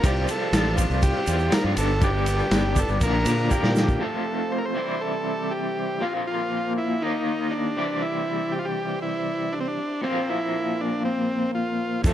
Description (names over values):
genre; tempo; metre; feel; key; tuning
psychedelic rock; 120 BPM; 4/4; straight; C mixolydian; A4 = 440 Hz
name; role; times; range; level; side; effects
overdriven combo organ; melody; 0.0-12.1 s; C4 to C5; -27 LUFS; equal; tape echo
string machine, violas; sustained chords; 0.0-12.1 s; G4 to D6; -39 LUFS; right 4 dB; none
electric guitar through a small old amp; riff; 0.0-12.1 s; F2 to Bb4; -26 LUFS; left 1 dB; tremolo
fuzz fingered electric bass; bass; 0.0-4.0, 12.0-12.1 s; G1 to Bb2; -25 LUFS; equal; overdrive
vintage drum kit; drums; 0.0-4.0, 12.0-12.1 s; hi-hat, kick drum, ride cymbal, snare drum; -24 LUFS; equal; none
tube shaker; percussion; 0.0-3.9, 12.0-12.1 s; none; -40 LUFS; right 12 dB; none
room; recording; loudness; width
light reverb, studio reverb; none; -22 LUFS; side -11 dB against mid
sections
0.0-4.0 A section; 4.0-12.1 B section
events
drum fill 3.5-4.0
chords
0.0 Csus4; 1.8 G; 3.0 Bb; 4.0 F; 4.8 C; 6.0 Bbsus2; 7.0 Eb; 7.8 C; 10.0 Bbsus2